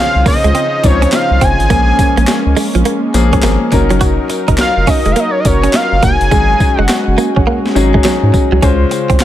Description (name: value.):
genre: R&B, new jack swing.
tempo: 104 BPM.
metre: 4/4.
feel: swing 64% on 16ths.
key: unclear.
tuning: A4 = 441 Hz.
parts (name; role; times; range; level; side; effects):
fat analog lead; melody; 0.0-9.2 s; Db5 to Ab5; -16 LUFS; equal; ping-pong delay.
warm concert grand piano; accompaniment; 0.0-9.2 s; F3 to C5; -18 LUFS; left 4 dB; none.
warm analog pad; sustained chords; 0.0-9.2 s; Db3 to C5; -19 LUFS; equal; chorus.
round analog bass; bass; 0.2-9.2 s; F1 to Ab2; -14 LUFS; equal; none.
direct-recorded clean electric guitar; riff; 0.3-9.2 s; F3 to Gb4; -18 LUFS; right 5 dB; analog chorus.
boom bap sampler-style drum kit; drums; 0.3-9.2 s; handclaps, hi-hat, kick drum, snare drum, tambourine; -15 LUFS; equal; overdrive.
room: digital ambience.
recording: none.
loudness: -9 LUFS.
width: side -12 dB against mid.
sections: 0.0-9.2 A section.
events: hi-hats muted 6.3-8.6.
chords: 0.0 Absus4; 1.7 Bbm7; 3.7 Gb6; 6.3 Ab7sus4; 8.6 Dbmaj7.